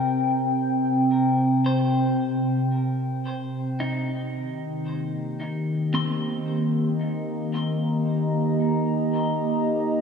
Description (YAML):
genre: ambient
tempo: free time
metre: none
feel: none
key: Eb major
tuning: A4 = 440 Hz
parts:
  - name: warbly tape-like pad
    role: sustained chords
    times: 0.0-10.0 s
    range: C3 to Bb5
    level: -22 LUFS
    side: equal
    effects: chorus, built-in reverb
  - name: clean electric guitar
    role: arpeggios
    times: 0.0-9.2 s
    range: C4 to C6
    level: -35 LUFS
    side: equal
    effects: wide subtle chorus, diffuse ambient delay
room: wet lush hall reverb, RT60 3.0 s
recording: dreamy mix soaked in reverb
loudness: -22 LUFS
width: side -6 dB against mid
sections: 0.0-10.0 A section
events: none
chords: 0.0 Cm; 4.3 Eb